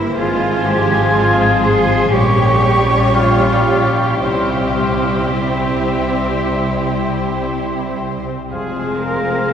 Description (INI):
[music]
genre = classical, slow romantic movement for symphony orchestra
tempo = 54-62 BPM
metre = 4/4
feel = rubato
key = F minor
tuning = A4 = 440 Hz
[part]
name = rich studio violin section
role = melody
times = 0.0-9.5 s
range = C5 to Db5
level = -26 LUFS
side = left 3 dB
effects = none
[part]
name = warm studio violin section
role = second line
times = 0.0-9.5 s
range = E4 to Ab4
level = -25 LUFS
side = left 1 dB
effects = none
[part]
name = rich studio viola section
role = accompaniment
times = 0.0-9.5 s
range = G3 to C4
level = -26 LUFS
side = right 2 dB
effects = none
[part]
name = concert harp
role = arpeggios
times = 0.0-9.5 s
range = F2 to Db5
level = -28 LUFS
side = left 3 dB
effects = none
[part]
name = warm studio cello section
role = bass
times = 0.0-9.5 s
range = E4 to Bb4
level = -22 LUFS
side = right 2 dB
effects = none
[part]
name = warm studio double bass section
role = bass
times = 0.0-9.5 s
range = F1 to C2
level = -20 LUFS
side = right 1 dB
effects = none
[part]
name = clear oboe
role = second line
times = 0.2-9.5 s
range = E5 to Db6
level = -22 LUFS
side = right 1 dB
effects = none
[part]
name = mellow hollow large flute ensemble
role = second line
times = 0.2-9.5 s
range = C6 to Db6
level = -24 LUFS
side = left 1 dB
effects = none
[part]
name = warm clarinet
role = second line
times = 0.2-9.5 s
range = G4 to Ab4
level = -26 LUFS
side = right 1 dB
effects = none
[part]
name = warm bassoon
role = accompaniment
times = 0.2-9.5 s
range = F3 to G3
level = -25 LUFS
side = equal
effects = none
[part]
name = mellow French horn section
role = sustained chords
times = 0.2-9.5 s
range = F3 to Db4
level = -23 LUFS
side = left 4 dB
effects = none
[sound]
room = wet cathedral reverb, RT60 5.8 s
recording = recorded in a church or concert hall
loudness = -13 LUFS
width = side -8 dB against mid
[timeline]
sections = 0.0-9.5 A section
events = none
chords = 0.2 Fm/Ab; 2.1 Gdim/Bb; 4.2 C; 8.5 Fm